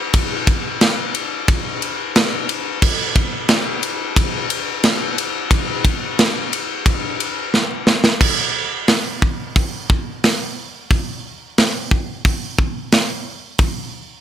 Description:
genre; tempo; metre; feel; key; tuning
metal; 89 BPM; 4/4; straight; none; none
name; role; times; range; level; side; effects
tight metal drum kit; drums; 0.1-13.7 s; crash cymbal, hi-hat, kick drum, ride cymbal, snare drum; -16 LUFS; equal; none
room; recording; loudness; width
light reverb; none; -16 LUFS; side -10 dB against mid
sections
0.0-8.2 A section; 8.2-14.2 B section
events
drum fill 7.5-8.2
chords
none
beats
| 0.14 0.81 1.49 2.16 | 2.83 3.50 4.18 4.85 | 5.52 6.19 6.87 7.54 | 8.21 8.88 9.56 10.23 | 10.90 11.58 12.25 12.92 | 13.59

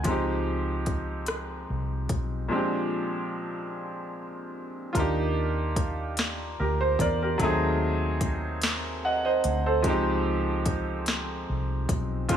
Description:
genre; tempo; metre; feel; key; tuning
slow six-eight R&B; 49 BPM (dotted quarters); 6/8; straight; Eb major; A4 = 440 Hz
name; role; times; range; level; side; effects
clear grand piano; accompaniment; 0.0-12.4 s; Bb2 to Gb5; -28 LUFS; right 1 dB; none
smooth R&B drum kit; drums; 0.0-12.4 s; hi-hat, kick drum, rim click, snare drum; -29 LUFS; equal; overdrive
vintage muted fingered electric bass; bass; 0.1-12.4 s; Bb1 to Fb2; -30 LUFS; equal; none
room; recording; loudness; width
light reverb, digital ambience; studio ambience; -25 LUFS; side -9 dB against mid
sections
0.0-4.9 A section; 4.9-12.4 B section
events
break 2.5-4.9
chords
0.0 Dbmaj9#11; 2.5 Bb13; 4.9 Ebmaj7; 7.4 Ab7b9/Eb; 9.8 Dbmaj9#11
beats
| 0.05 1.27 | 2.50 3.72 | 4.95 6.17 | 7.39 8.62 | 9.84 11.07 | 12.29

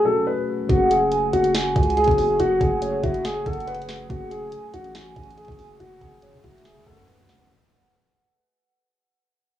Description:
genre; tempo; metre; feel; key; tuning
hip hop, trap; 141 BPM; 4/4; half-time; F# minor; A4 = 443 Hz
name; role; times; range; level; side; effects
dark grand piano; melody; 0.0-7.5 s; F#4 to B4; -22 LUFS; left 1 dB; low-pass filter, cassette tape, tape echo
mellow tine electric piano; accompaniment; 0.0-7.5 s; F#3 to G#4; -30 LUFS; left 4 dB; phaser, low-pass filter, cassette tape
hollow clarinet-like synth lead; second line; 0.7-7.5 s; C#5 to G#5; -26 LUFS; right 3 dB; chorus, cassette tape, tape echo
dark analog pad; sustained chords; 1.8-7.5 s; F#3 to G#4; -34 LUFS; equal; chorus, cassette tape
growling 808-style bass; bass; 0.7-7.5 s; F#1 to C#3; -30 LUFS; right 1 dB; none
trap drum kit; drums; 0.7-7.4 s; hi-hat, kick drum, snare drum; -25 LUFS; equal; cassette tape
room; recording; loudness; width
light reverb; home recording on cassette, small room ambience; -18 LUFS; side -12 dB against mid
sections
0.0-7.5 A section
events
fade-out 0.0-7.5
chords
0.0 F#madd9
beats
0.27 | 0.69 1.12 1.55 1.97 | 2.40 2.82 3.25 3.67 | 4.10 4.53 4.95 5.38 | 5.80 6.23 6.65 7.08

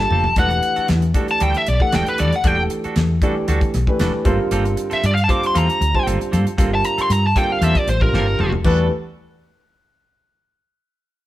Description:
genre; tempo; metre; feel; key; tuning
electric jazz fusion; 116 BPM; 4/4; swing 53% on 16ths; E minor; A4 = 440 Hz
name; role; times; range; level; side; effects
bluesy overdriven lead guitar; melody; 0.0-8.5 s; Bb4 to D6; -19 LUFS; left 1 dB; distortion
dark concert grand piano; accompaniment; 0.0-8.9 s; D3 to D5; -24 LUFS; right 1 dB; none
clean electric guitar; stabs; 0.0-8.9 s; G3 to A4; -28 LUFS; right 2 dB; none
woody fretless electric bass; bass; 0.0-8.9 s; E1 to G2; -20 LUFS; equal; none
damped 70s drum kit; drums; 0.1-8.8 s; china cymbal, hi-hat, kick drum, snare drum, toms; -21 LUFS; equal; none
room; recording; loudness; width
moderate stone room reverb, RT60 1.0 s; band playing live in one room; -15 LUFS; side -15 dB against mid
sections
0.0-8.7 A section; 8.7-10.7 B section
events
drum fill 0.0-0.4, 8.1-8.7; lead electric guitar solo 0.0-8.7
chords
0.4 Em11; 4.3 Gm11; 8.7 Em11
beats
| 0.37 0.89 1.41 1.93 | 2.44 2.96 3.48 4.00 | 4.52 5.03 5.55 6.07 | 6.58 7.10 7.62 8.13 | 8.65

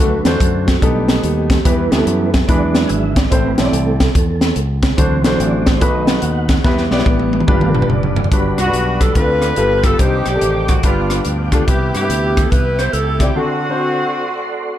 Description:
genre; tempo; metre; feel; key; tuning
uptempo gospel; 144 BPM; 4/4; swing 64% on 8ths; G major; A4 = 439 Hz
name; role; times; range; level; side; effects
clear grand piano; accompaniment; 0.0-14.2 s; G2 to D5; -19 LUFS; left 2 dB; none
mellow tonewheel organ; sustained chords; 0.0-14.8 s; D#3 to D6; -23 LUFS; right 4 dB; fast rotary speaker, chorus vibrato
fingered electric bass; bass; 0.0-13.3 s; F#1 to G2; -19 LUFS; equal; none
crisp fusion drum kit; drums; 0.3-13.3 s; hi-hat, kick drum, rim click, snare drum, toms; -16 LUFS; equal; none
bright alto flute; melody; 8.6-14.8 s; F4 to C5; -22 LUFS; right 3 dB; none
bright saxophone section; melody; 8.6-14.8 s; A3 to C5; -22 LUFS; left 3 dB; tape echo
room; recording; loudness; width
light reverb, small room ambience; dark, warm production; -13 LUFS; side -12 dB against mid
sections
0.0-8.3 A section; 8.3-14.8 B section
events
tonewheel organ solo 0.0-8.3; drum fill 6.6-8.3; break 13.4-14.8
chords
0.0 D; 0.8 Baug7; 1.7 Em; 2.5 E7; 3.3 Am; 5.0 D7; 5.8 B7; 6.6 Em; 7.5 G7; 8.3 Gmaj7; 9.2 Dm7; 9.6 G9; 10.0 Cmadd9; 10.8 G7; 11.7 Cmaj7; 13.4 D7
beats
0.41 0.82 1.24 | 1.65 2.07 2.49 2.90 | 3.32 3.73 4.15 4.57 | 4.98 5.40 5.81 6.23 | 6.65 7.06 7.48 7.90 | 8.32 8.73 9.15 9.57 | 9.99 10.41 10.83 11.25 | 11.68 12.10 12.52 12.94 | 13.35 13.77 14.19 14.61

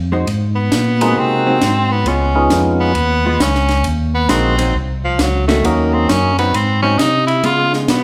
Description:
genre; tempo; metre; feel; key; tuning
soul jazz organ trio; 134 BPM; 4/4; swing 65% on 8ths; Ab mixolydian; A4 = 440 Hz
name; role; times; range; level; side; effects
tonewheel organ; bass; 0.0-8.0 s; Bb1 to Db3; -20 LUFS; equal; chorus vibrato, stopped rotary speaker
archtop guitar, miked and amplified; accompaniment; 0.1-8.0 s; Eb3 to C5; -24 LUFS; equal; none
compact cocktail drum kit; drums; 0.3-8.0 s; hi-hat, ride cymbal, snare drum; -23 LUFS; equal; none
edgy tenor saxophone; melody; 0.6-8.0 s; F3 to F4; -19 LUFS; equal; none
percussive tonewheel organ; melody; 1.0-6.3 s; Gb3 to Gb4; -20 LUFS; equal; slow rotary speaker
room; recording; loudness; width
moderate large studio reverb, RT60 1.2 s; band playing live in one room; -15 LUFS; mono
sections
0.3-8.0 A section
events
tenor saxophone solo 0.3-8.0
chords
0.3 Ab7; 2.1 Db7; 3.9 Ab7; 5.6 Ebm7; 6.5 Ab7; 7.4 Db7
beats
| 0.27 0.71 1.16 1.61 | 2.06 2.51 2.96 3.40 | 3.85 4.30 4.75 5.20 | 5.64 6.09 6.54 6.99 | 7.44 7.89

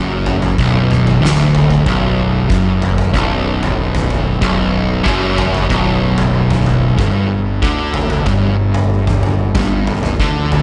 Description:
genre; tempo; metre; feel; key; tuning
stoner and doom metal; 94 BPM; 4/4; straight; B minor; A4 = 440 Hz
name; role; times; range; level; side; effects
fuzz guitar; riff; 0.0-10.6 s; B1 to D3; -17 LUFS; equal; distortion
fuzz fingered electric bass; bass; 0.0-10.6 s; B0 to D2; -22 LUFS; equal; overdrive
oversized low-tuned drum kit; drums; 0.3-10.6 s; kick drum, snare drum, toms; -21 LUFS; equal; none
room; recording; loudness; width
studio ambience; nothing above 10.6 kHz; -15 LUFS; mono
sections
0.0-10.6 A section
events
none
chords
0.0 Bm; 7.0 G5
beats
0.58 1.22 | 1.86 2.50 3.14 3.78 | 4.42 5.06 5.70 6.34 | 6.98 7.63 8.27 8.91 | 9.55 10.20

